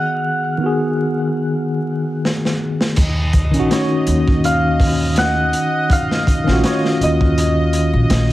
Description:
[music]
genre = trip hop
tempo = 82 BPM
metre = 4/4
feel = swing 55% on 16ths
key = Eb minor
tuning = A4 = 440 Hz
[part]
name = santur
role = melody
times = 0.0-8.3 s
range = Db5 to Gb5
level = -22 LUFS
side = right 1 dB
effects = dub echo
[part]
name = mellow tine electric piano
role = accompaniment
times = 0.0-8.3 s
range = Eb3 to Ab4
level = -18 LUFS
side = left 1 dB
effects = medium stereo tremolo, harmonic tremolo
[part]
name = bright chamber string section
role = sustained chords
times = 0.0-8.3 s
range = Eb5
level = -27 LUFS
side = equal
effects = vintage 12-bit sampler grit
[part]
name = crunchy breakbeat drum kit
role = drums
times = 2.3-8.3 s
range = crash cymbal, hi-hat, kick drum, snare drum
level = -19 LUFS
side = equal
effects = none
[part]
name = upright bass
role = bass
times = 3.0-8.3 s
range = Bb1 to Eb2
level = -18 LUFS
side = equal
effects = none
[sound]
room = studio ambience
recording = vinyl crackle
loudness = -14 LUFS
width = side -15 dB against mid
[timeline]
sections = 0.0-3.0 A section; 3.0-8.3 B section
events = filter sweep on tine electric piano 0.0-3.0; break 0.1-3.0; drum fill 2.2-3.0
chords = 0.0 Abm7; 3.0 Ebm9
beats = | 0.05 0.78 1.51 2.25 | 2.98 3.71 4.44 5.17 | 5.90 6.64 7.37 8.10

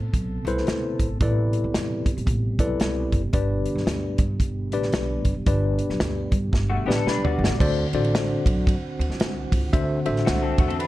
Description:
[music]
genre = uptempo 1960s-style soul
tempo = 113 BPM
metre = 4/4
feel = swing 61% on 8ths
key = D mixolydian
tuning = A4 = 440 Hz
[part]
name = mellow tonewheel organ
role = sustained chords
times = 0.0-10.9 s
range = B2 to A4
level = -32 LUFS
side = right 2 dB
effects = fast rotary speaker, overdrive
[part]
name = upright bass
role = bass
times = 0.0-10.9 s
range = F#1 to A2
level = -27 LUFS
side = equal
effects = none
[part]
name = natural country drum kit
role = drums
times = 0.1-10.9 s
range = crash cymbal, hi-hat, kick drum, ride cymbal, snare drum, toms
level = -24 LUFS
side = equal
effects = vintage 12-bit sampler grit
[part]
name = mellow tine electric piano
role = accompaniment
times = 0.5-10.8 s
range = G2 to E5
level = -26 LUFS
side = left 2 dB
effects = medium stereo tremolo
[part]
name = electric guitar through a small old amp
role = riff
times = 6.7-10.9 s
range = A3 to D5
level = -28 LUFS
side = left 4 dB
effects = analog chorus
[sound]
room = small room ambience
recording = none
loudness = -21 LUFS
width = side -16 dB against mid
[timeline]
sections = 0.0-7.6 A section; 7.6-10.9 B section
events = drum fill 6.5-7.6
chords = 0.0 Amadd9; 3.3 G; 7.6 D7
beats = 0.14 0.67 | 1.21 1.74 2.27 2.81 | 3.34 3.87 4.41 4.94 | 5.47 6.00 6.54 7.07 | 7.60 8.13 8.67 9.20 | 9.73 10.27 10.80

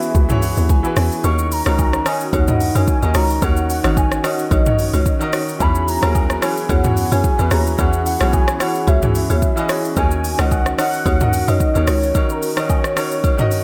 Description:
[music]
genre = amapiano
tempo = 110 BPM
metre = 4/4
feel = swing 55% on 16ths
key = Eb phrygian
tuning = A4 = 441 Hz
[part]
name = warm velvety synth lead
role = melody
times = 0.0-13.6 s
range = Bb4 to Db6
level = -26 LUFS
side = equal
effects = chorus, digital delay
[part]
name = clear baby grand piano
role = accompaniment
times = 0.0-13.6 s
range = Eb3 to G#5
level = -26 LUFS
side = equal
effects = none
[part]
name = airy breathy pad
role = sustained chords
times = 0.0-13.6 s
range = B3 to G#4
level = -31 LUFS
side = equal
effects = none
[part]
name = deep house drum kit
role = drums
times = 0.0-13.6 s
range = hi-hat, kick drum, rim click, shaker, toms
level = -22 LUFS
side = equal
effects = none
[part]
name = hollow log drum bass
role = bass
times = 0.1-12.1 s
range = Ab1 to Gb2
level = -21 LUFS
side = equal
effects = none
[part]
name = agogo bells and woodblock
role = percussion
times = 1.2-13.4 s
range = none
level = -33 LUFS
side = equal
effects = none
[part]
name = marimba with medium hard mallets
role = stabs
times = 1.7-12.0 s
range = Eb4 to Db5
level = -27 LUFS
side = equal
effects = none
[sound]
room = little or no reverb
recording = none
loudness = -17 LUFS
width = mono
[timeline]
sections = 0.0-13.6 A section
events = grand piano fill 0.1-1.2; kick muted 1.2-1.8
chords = 0.0 E69; 1.2 Ebm7; 5.6 E69; 10.0 Ebm7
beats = 0.15 0.69 | 1.24 1.79 2.33 2.88 | 3.42 3.97 4.51 5.06 | 5.60 6.15 6.70 7.24 | 7.79 8.33 8.88 9.42 | 9.97 10.51 11.06 11.60 | 12.15 12.70 13.24

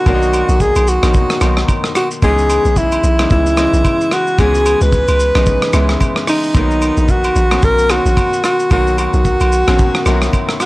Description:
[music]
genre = amapiano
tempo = 111 BPM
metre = 4/4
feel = swing 58% on 16ths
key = unclear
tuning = A4 = 439 Hz
[part]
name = breathy alto saxophone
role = melody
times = 0.0-10.7 s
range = D#4 to B4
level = -15 LUFS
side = equal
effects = analog delay
[part]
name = clear concert grand piano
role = accompaniment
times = 0.0-10.7 s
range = B2 to D#5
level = -21 LUFS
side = left 3 dB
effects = none
[part]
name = hollow log drum bass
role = bass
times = 0.1-10.3 s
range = A#1 to C#2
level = -15 LUFS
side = equal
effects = none
[part]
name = warm soul drum kit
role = drums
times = 0.1-10.7 s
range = hi-hat, kick drum, rim click, shaker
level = -18 LUFS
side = equal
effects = none
[part]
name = agogo bells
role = percussion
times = 0.1-10.7 s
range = none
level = -25 LUFS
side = right 2 dB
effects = none
[sound]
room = small room ambience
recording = dry, gritty hardware recording, cassette tape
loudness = -11 LUFS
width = side -19 dB against mid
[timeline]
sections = 0.0-10.7 A section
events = none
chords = 0.0 Bmaj7; 2.2 C#m9; 6.5 Bmaj7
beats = | 0.06 0.60 1.14 1.68 | 2.22 2.76 3.31 3.85 | 4.39 4.93 5.47 6.01 | 6.55 7.09 7.63 8.17 | 8.71 9.25 9.79 10.33

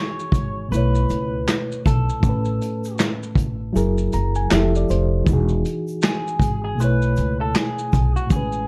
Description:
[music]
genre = lo-fi hip hop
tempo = 79 BPM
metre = 4/4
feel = swing 60% on 16ths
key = unclear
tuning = A4 = 441 Hz
[part]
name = electric guitar through a small old amp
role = melody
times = 0.0-8.7 s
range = F#4 to C#5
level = -30 LUFS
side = equal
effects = subtle chorus, low-pass filter
[part]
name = reed electric piano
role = accompaniment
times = 0.0-8.7 s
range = A2 to A#5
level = -27 LUFS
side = equal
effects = fast tremolo, cassette tape, low-pass filter
[part]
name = vintage brush drum kit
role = drums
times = 0.2-8.7 s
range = handclaps, hi-hat, kick drum, shaker, snare drum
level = -24 LUFS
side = equal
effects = none
[part]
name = upright bass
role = bass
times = 0.3-8.7 s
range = E1 to C#2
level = -24 LUFS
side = equal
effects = none
[part]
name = tube shaker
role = percussion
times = 0.3-8.5 s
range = none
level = -48 LUFS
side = equal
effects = none
[sound]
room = light reverb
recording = dark, warm production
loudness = -21 LUFS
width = mono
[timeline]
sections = 0.0-8.7 A section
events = reed electric piano fill 3.7-5.3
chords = 0.0 Emaj9; 0.7 B9sus4; 2.2 Aadd9; 3.7 F#9; 4.5 Fmaj9; 5.3 Emaj9; 6.8 B9sus4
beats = 0.71 1.47 | 2.23 2.99 3.75 4.51 | 5.27 6.03 6.79 7.55 | 8.31

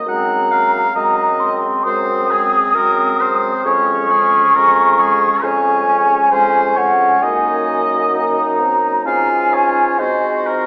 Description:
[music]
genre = classical, slow romantic movement for wind quintet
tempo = 67 BPM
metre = 4/4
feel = rubato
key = Db major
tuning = A4 = 438 Hz
[part]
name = warm oboe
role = second line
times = 0.0-10.7 s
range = Ab4 to Gb5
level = -18 LUFS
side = equal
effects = none
[part]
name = dark French horn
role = accompaniment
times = 0.0-10.7 s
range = Ab3 to Db4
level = -28 LUFS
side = equal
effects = none
[part]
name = mellow hollow concert flute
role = melody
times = 0.1-10.7 s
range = Eb5 to Eb6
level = -14 LUFS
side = equal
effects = none
[part]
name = bright clarinet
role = accompaniment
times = 0.1-10.7 s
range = C4 to Gb4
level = -24 LUFS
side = equal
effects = none
[part]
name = mellow bassoon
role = bass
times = 0.1-10.7 s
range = F2 to Ab2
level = -22 LUFS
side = equal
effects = none
[sound]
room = wet church reverb, RT60 3.4 s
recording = recorded in a church or concert hall, small speaker sound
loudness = -12 LUFS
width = side -33 dB against mid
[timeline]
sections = 0.0-10.7 A section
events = none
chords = 0.1 Ab7/Gb; 3.6 Db/F; 7.2 Ebm/Gb; 9.1 Db/Ab; 10.0 Ab9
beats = | 0.07 0.95 1.85 2.74 | 3.65 4.55 5.43 6.32 | 7.23 8.14 9.07 10.00

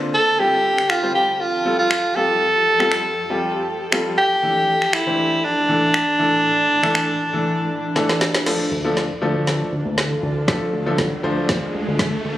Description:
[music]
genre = dance-pop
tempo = 119 BPM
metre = 4/4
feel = straight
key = D minor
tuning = A4 = 439 Hz
[part]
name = clear grand piano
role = accompaniment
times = 0.0-11.7 s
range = D3 to C5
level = -24 LUFS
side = left 1 dB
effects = none
[part]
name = granular cloud pad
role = sustained chords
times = 0.0-12.4 s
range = D2 to A4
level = -29 LUFS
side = right 1 dB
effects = built-in reverb, sidechain pumping
[part]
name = breathy alto saxophone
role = melody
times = 0.1-8.0 s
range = D4 to A4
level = -17 LUFS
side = equal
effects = ping-pong delay
[part]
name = deep house drum kit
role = drums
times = 0.8-12.1 s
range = crash cymbal, finger snaps, kick drum, snare drum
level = -22 LUFS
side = equal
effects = none
[part]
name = riser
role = sound effects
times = 9.8-12.4 s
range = none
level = -30 LUFS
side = equal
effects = none
[part]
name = chorused synth bass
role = bass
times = 8.7-12.4 s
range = D2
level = -24 LUFS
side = equal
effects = sidechain pumping
[sound]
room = light reverb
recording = recorded on a phone in the room, studio reverb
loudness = -17 LUFS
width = side -14 dB against mid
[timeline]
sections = 0.0-8.5 A section; 8.5-12.4 B section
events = drum fill 8.0-8.5, 8.5-12.4; build-up 8.5-12.4; riser 9.8-12.4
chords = 0.4 Fadd9; 4.4 Asus4; 8.5 Dm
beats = | 0.40 0.90 1.41 1.91 | 2.41 2.92 3.42 3.93 | 4.43 4.93 5.44 5.94 | 6.45 6.95 7.46 7.96 | 8.46 8.97 9.47 9.98 | 10.48 10.98 11.49 11.99

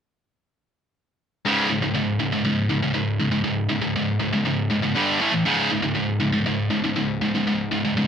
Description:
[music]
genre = metal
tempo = 120 BPM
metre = 4/4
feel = straight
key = unclear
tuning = A4 = 441 Hz
[part]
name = high-gain distorted guitar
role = riff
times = 1.5-8.1 s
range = C#2 to A3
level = -20 LUFS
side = equal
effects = distortion
[sound]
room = moderate studio reverb, RT60 0.6 s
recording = rough home demo mix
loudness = -20 LUFS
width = side -8 dB against mid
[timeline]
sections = 1.5-8.1 A section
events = none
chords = 1.5 C#5; 5.0 G5; 5.2 A5; 5.5 C#5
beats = | 1.46 1.96 2.46 2.96 | 3.46 3.97 4.47 4.97 | 5.47 5.97 6.47 6.98 | 7.48 7.98

